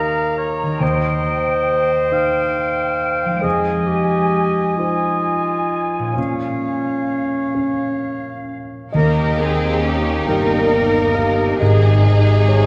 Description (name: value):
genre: cinematic, emotional film score for orchestra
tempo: 45 BPM (dotted quarters)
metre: 6/8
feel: rubato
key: unclear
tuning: A4 = 436 Hz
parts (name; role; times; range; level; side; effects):
- flute section; second line; 0.0-8.6 s; F5 to Bb5; -28 LUFS; equal; none
- mellow clarinet; second line; 0.0-8.4 s; Db4 to C5; -24 LUFS; equal; none
- warm oboe; second line; 0.0-8.6 s; Db5 to F5; -26 LUFS; equal; none
- dark grand piano; accompaniment; 0.0-12.7 s; Eb2 to G5; -24 LUFS; equal; none
- concert harp; arpeggios; 0.0-12.7 s; Ab2 to C6; -27 LUFS; equal; none
- rich symphonic violin section; melody; 8.9-12.7 s; G4 to Bb4; -30 LUFS; equal; none
- rich symphonic violin section; second line; 8.9-12.7 s; Eb4; -28 LUFS; equal; none
- rich symphonic viola section; accompaniment; 8.9-12.7 s; C3 to Db4; -27 LUFS; equal; none
- clear French horn section; sustained chords; 8.9-12.7 s; C3 to Bb4; -26 LUFS; equal; none
- clear symphonic double bass section; bass; 8.9-12.7 s; G1 to Eb2; -25 LUFS; equal; none
- rich symphonic cello section; bass; 8.9-12.7 s; G4 to Bb4; -24 LUFS; equal; none
room: wet church reverb, RT60 3.4 s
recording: recorded in a church or concert hall, nothing above 10.8 kHz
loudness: -18 LUFS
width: mono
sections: 0.0-8.9 A section; 8.9-12.7 B section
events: none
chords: 0.0 Ebsus2; 0.8 Cm/Eb; 3.4 Fm7; 6.2 Bbm; 8.9 Eb; 11.6 Ab